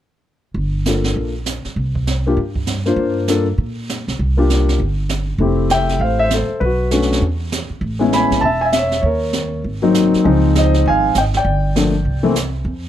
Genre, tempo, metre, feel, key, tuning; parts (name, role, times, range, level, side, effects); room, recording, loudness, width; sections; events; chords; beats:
jazz piano trio; 198 BPM; 4/4; swing 62% on 8ths; A4 = 440 Hz
upright bass; bass; 0.5-12.9 s; E1 to Bb2; -19 LUFS; right 1 dB
jazz brush drum kit; drums; 0.6-12.9 s; brushed snare drum, hi-hat, kick drum, snare drum; -25 LUFS; right 3 dB
warm concert grand piano; melody; 0.9-12.3 s; E3 to B5; -16 LUFS; left 2 dB; plate reverb
light reverb; -15 LUFS; side -11 dB against mid
0.6-5.4 A section; 5.4-12.9 B section
0.6 Gm9; 1.8 C5; 3.0 Gm7; 4.2 C7sus4; 5.4 Fmaj9; 6.6 Bm9; 7.2 N.C.; 7.8 Amaj9; 9.0 Eb5; 9.6 Ab9; 10.2 Dbmaj9; 11.5 Gm7; 12.1 Csus2
| 0.56 0.86 1.16 1.47 | 1.77 2.07 2.38 2.68 | 2.98 3.29 3.59 3.89 | 4.20 4.50 4.80 5.10 | 5.41 5.71 6.01 6.32 | 6.62 6.92 7.22 7.52 | 7.83 8.13 8.43 8.73 | 9.04 9.34 9.64 9.94 | 10.24 10.55 10.85 11.15 | 11.45 11.76 12.06 12.36 | 12.66